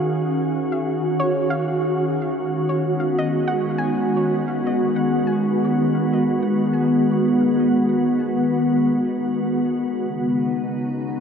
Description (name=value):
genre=ambient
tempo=free time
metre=none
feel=none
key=unclear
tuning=A4 = 437 Hz
part: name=glassy FM pad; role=sustained chords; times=0.0-11.2 s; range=Db3 to Ab4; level=-18 LUFS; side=equal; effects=ensemble chorus, built-in reverb
part: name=soft round pluck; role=arpeggios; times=0.0-5.9 s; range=Db5 to Ab5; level=-30 LUFS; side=equal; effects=chorus, vintage 12-bit sampler grit, ping-pong delay
room=wet huge ambient reverb, RT60 8.8 s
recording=dreamy mix soaked in reverb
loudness=-18 LUFS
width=side -7 dB against mid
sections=0.0-11.2 A section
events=fade-out on synth pluck 0.0-11.2; fade-out 7.4-11.2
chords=0.0 Ebm9; 2.2 Abm7/Eb; 10.0 Db7sus2